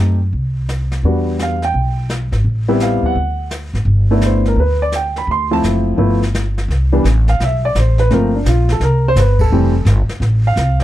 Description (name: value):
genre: jazz piano trio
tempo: 170 BPM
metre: 4/4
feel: swing 65% on 8ths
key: G major, C major from 6.7 s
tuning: A4 = 440 Hz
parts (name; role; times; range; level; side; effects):
- warm baby grand piano; melody; 0.0-10.8 s; E3 to C6; -16 LUFS; equal; none
- upright bass; bass; 0.0-10.8 s; F1 to F#2; -15 LUFS; equal; none
- jazz brush drum kit; drums; 0.3-10.8 s; brushed snare drum, crash cymbal, hi-hat, kick drum, snare drum; -26 LUFS; left 1 dB; none
room: little or no reverb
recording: dark, warm production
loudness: -13 LUFS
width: side -14 dB against mid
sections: 0.0-6.7 A section; 6.7-10.8 B section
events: band accent 9.3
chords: 0.0 N.C.; 1.0 Em9; 2.5 Am9; 3.2 D; 3.9 G69; 5.3 Dm7; 6.0 G9; 6.7 Cmaj7; 8.1 Gm11; 8.8 C5; 9.5 Fadd9